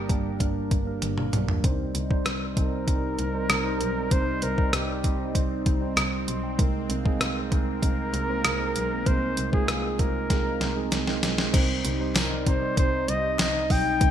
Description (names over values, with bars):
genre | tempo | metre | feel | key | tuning
1980s-style pop | 97 BPM | 4/4 | straight | unclear | A4 = 441 Hz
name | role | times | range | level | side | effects
mellow flugelhorn | melody | 0.0-14.1 s | G4 to G5 | -30 LUFS | left 1 dB | ping-pong delay
mellow tine electric piano | accompaniment | 0.0-14.1 s | G3 to C6 | -31 LUFS | right 5 dB | wide subtle chorus
phased analog pad | sustained chords | 0.0-14.1 s | F3 to Bb4 | -34 LUFS | left 2 dB | phaser, chorus
clear double bass | bass | 0.1-14.1 s | G1 to C3 | -31 LUFS | equal | none
clean 12-bit digital drum machine | drums | 0.1-14.1 s | crash cymbal, hi-hat, kick drum, rim click, snare drum, tambourine, toms | -25 LUFS | equal | gated reverb
group handclap | percussion | 12.2-13.5 s | none | barely audible | none | none
room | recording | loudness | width
light reverb | bright 1980s-style digital production | -23 LUFS | side -10 dB against mid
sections
0.0-11.5 A section; 11.5-14.1 B section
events
drum fill 1.0-1.6, 10.3-11.5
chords
0.0 Gm; 1.6 Cm; 6.6 Abadd9; 11.5 Cm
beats
0.40 1.02 | 1.64 2.26 2.88 3.50 | 4.11 4.73 5.35 5.97 | 6.59 7.21 7.83 8.44 | 9.06 9.68 10.30 10.92 | 11.54 12.15 12.77 13.39 | 14.01